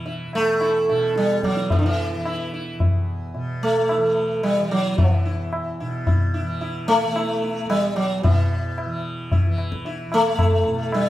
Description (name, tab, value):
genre	indian classical, Hindustani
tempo	110 BPM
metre	3/4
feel	straight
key	E raga kafi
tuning	A4 = 441 Hz
part	tanpura	drone	0.0-11.1 s	E2 to E3	-30 LUFS	right 1 dB	none
part	sitar	melody	0.1-11.1 s	D3 to E4	-21 LUFS	equal	plate reverb
part	tabla	percussion	0.1-11.1 s	none	-22 LUFS	left 1 dB	none
room	wet studio ambience, RT60 0.5 s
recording	heard from further back in the room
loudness	-19 LUFS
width	side -14 dB against mid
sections	0.0-11.1 A section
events	none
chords	none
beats	| 0.05 0.60 1.15 | 1.70 2.25 2.80 | 3.35 3.89 4.44 | 4.98 5.53 6.07 | 6.62 7.16 7.70 | 8.24 8.78 9.32 | 9.86 10.40 10.93